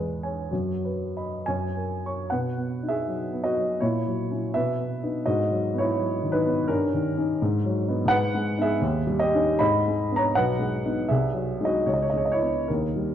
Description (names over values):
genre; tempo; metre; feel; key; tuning
classical, romantic character piece for solo piano; 62-86 BPM; 2/4; rubato; B major, G# minor from 8.1 s; A4 = 440 Hz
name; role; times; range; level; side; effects
dark upright piano; solo; 0.0-13.1 s; B1 to C#6; -23 LUFS; equal; none
room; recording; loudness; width
wet recital hall reverb, RT60 1.6 s; dark, warm production; -23 LUFS; side -10 dB against mid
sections
0.0-2.3 A section; 2.3-13.1 B section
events
none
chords
0.0 C#m7/E; 0.5 B/F#; 1.5 F#; 2.3 B; 3.8 F#7/A#; 4.5 B; 5.3 G#m7; 6.7 D#7/G; 7.4 G#m7; 8.1 G#m; 8.8 D#7; 9.6 G#m; 10.4 G#m/B; 11.1 G#7/B#; 11.9 C#m7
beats
| 0.52 1.46 | 2.29 3.06 | 3.81 4.54 | 5.26 5.98 | 6.70 7.40 | 8.10 8.81 | 9.61 10.36 | 11.10 11.87 | 12.69